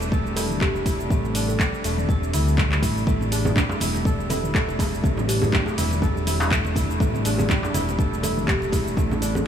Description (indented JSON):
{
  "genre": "afro house",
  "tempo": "122 BPM",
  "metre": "4/4",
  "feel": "swing 56% on 16ths",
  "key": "A minor",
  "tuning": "A4 = 436 Hz",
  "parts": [
    { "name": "warm analog pad", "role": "sustained chords", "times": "0.0-9.5 s", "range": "C3 to D4", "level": "-30 LUFS", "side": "right 1 dB", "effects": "chorus, sidechain pumping" },
    { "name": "kora", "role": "arpeggios", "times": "0.0-9.5 s", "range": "A3 to A4", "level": "-30 LUFS", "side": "right 1 dB", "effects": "sidechain pumping, tape echo" },
    { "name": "smooth gliding synth bass", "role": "bass", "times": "0.0-9.4 s", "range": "E1 to D2", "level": "-26 LUFS", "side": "left 1 dB", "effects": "sidechain pumping" },
    { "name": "afro-pop drum kit", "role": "drums", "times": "0.0-9.4 s", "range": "handclaps, hi-hat, shaker, toms", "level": "-28 LUFS", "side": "equal", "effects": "studio reverb" },
    { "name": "electronic kick drum", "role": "drums", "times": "0.1-9.1 s", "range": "none", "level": "-23 LUFS", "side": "equal", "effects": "studio reverb" },
    { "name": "kalimba", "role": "melody", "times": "0.4-9.5 s", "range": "G4 to A4", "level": "-33 LUFS", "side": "right 1 dB", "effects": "tape echo" },
    { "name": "congas", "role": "percussion", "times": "3.1-9.4 s", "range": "none", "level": "-30 LUFS", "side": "right 3 dB", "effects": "none" },
    { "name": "djembe", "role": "percussion", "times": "3.3-9.4 s", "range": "none", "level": "-32 LUFS", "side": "left 2 dB", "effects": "none" }
  ],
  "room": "light reverb",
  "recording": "none",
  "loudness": "-20 LUFS",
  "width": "side -9 dB against mid",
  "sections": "0.0-9.5 A section",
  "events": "none",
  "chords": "0.0 Am7"
}